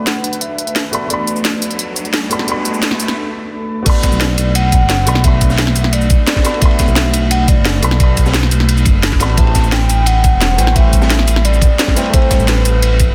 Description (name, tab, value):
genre	liquid drum and bass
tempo	174 BPM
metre	4/4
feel	straight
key	unclear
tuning	A4 = 445 Hz
part	hollow clarinet-like synth lead	melody	0.0-1.4, 3.9-13.1 s	B4 to A5	-24 LUFS	equal	chorus, delay
part	dark grand piano	accompaniment	0.0-13.1 s	A3 to B5	-25 LUFS	equal	dub echo
part	glassy FM pad	sustained chords	0.0-13.1 s	G3 to B5	-26 LUFS	equal	ensemble chorus, built-in reverb, sidechain pumping
part	smooth gliding synth bass	bass	0.0-13.1 s	E1 to B1	-17 LUFS	equal	high-pass filter
part	riser	sound effects	0.0-3.2 s	none	-31 LUFS	equal	none
part	drum and bass drum kit	drums	0.1-13.1 s	crash cymbal, hi-hat, shaker, snare drum	-20 LUFS	equal	none
part	crunchy breakbeat drum kit	drums	3.9-13.1 s	ride cymbal, snare drum	-24 LUFS	equal	high-pass filter on cymbals, high-pass filter on snare, high-pass filter on room
part	electronic kick drum	drums	3.9-13.1 s	none	-14 LUFS	equal	none
room	light reverb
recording	dense, heavily limited modern master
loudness	-13 LUFS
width	mono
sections	0.0-3.9 A section; 3.9-13.1 B section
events	build-up 0.0-3.9; riser 0.0-3.2; break 3.2-3.9; drop 3.9-13.1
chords	0.0 Bm7; 9.4 Am9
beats	0.07 0.41 0.76 | 1.10 1.45 1.79 2.14 | 2.48 2.83 3.17 3.52 | 3.86 4.21 4.55 4.89 | 5.24 5.58 5.93 6.28 | 6.62 6.96 7.31 7.65 | 8.00 8.34 8.69 9.03 | 9.38 9.72 10.07 10.41 | 10.76 11.10 11.45 11.79 | 12.14 12.48 12.83